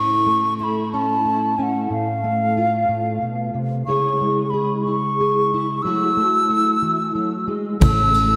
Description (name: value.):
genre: acoustic folk duo or small band.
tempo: 61 BPM (dotted quarters).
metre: 6/8.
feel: straight.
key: A major.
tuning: A4 = 436 Hz.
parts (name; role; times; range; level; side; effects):
wooden flute; melody; 0.0-8.4 s; F5 to E6; -22 LUFS; equal; analog delay.
fingerpicked plugged-in steel-string acoustic guitar; accompaniment; 0.0-8.4 s; A2 to C#5; -24 LUFS; equal; ensemble chorus.
upright bass; bass; 7.8-8.4 s; A1; -24 LUFS; equal; none.
soft brush drum kit; drums; 7.8-8.3 s; kick drum, ride cymbal; -27 LUFS; equal; none.
cajon; percussion; 7.8-8.2 s; none; -24 LUFS; equal; none.
room: wet lush hall reverb, RT60 2.9 s.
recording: dreamy mix soaked in reverb.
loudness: -20 LUFS.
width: mono.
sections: 0.0-8.4 A section.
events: none.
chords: 0.0 A; 1.9 F/A; 3.9 C#m; 5.8 F#m7; 7.8 A.